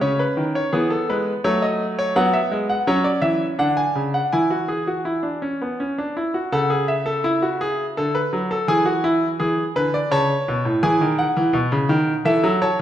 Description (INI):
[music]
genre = classical, baroque-style 3-part fugue for grand piano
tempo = 84 BPM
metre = 3/4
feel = straight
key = A major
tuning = A4 = 441 Hz
[part]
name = bright grand piano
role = solo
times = 0.0-12.8 s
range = A2 to A5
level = -18 LUFS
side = equal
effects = none
[sound]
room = wet recital hall reverb, RT60 1.5 s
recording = none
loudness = -18 LUFS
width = side -11 dB against mid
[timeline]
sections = 0.0-6.5 A section; 6.5-12.8 B section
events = none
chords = 0.0 C#m; 1.4 F#m; 2.2 F#5; 3.6 D; 4.3 E; 6.5 A/C#; 8.0 D; 8.7 E7; 10.1 A/C#; 10.8 E; 12.3 A/E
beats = | 0.03 0.73 1.44 | 2.15 2.87 3.59 | 4.32 5.06 5.80 | 6.54 7.26 7.98 | 8.70 9.41 10.12 | 10.83 11.55 12.27